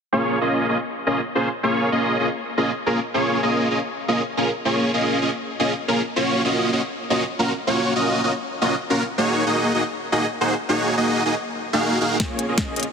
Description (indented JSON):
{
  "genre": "future bass",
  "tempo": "159 BPM",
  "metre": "4/4",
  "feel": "half-time",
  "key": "Bb minor",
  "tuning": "A4 = 440 Hz",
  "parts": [
    { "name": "dense compressed supersaw", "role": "riff", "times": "0.1-12.9 s", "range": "Bb3 to F5", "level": "-19 LUFS", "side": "equal", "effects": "vintage 12-bit sampler grit, sidechain pumping, low-pass filter, ping-pong delay" },
    { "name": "electronic kick drum", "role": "drums", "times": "12.2-12.7 s", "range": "none", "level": "-27 LUFS", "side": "equal", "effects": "none" },
    { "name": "trap drum kit", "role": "drums", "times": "12.2-12.9 s", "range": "hi-hat, snare drum", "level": "-25 LUFS", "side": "left 1 dB", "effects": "none" }
  ],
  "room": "moderate huge ambient reverb, RT60 6.1 s",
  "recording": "dense, heavily limited modern master",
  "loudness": "-19 LUFS",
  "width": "side -6 dB against mid",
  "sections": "0.1-12.2 A section",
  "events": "drum fill 12.2-12.9",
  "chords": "0.1 Bbm7; 3.0 Db6; 6.2 Gbmaj7; 9.2 Ab9sus4; 12.2 Bbm7"
}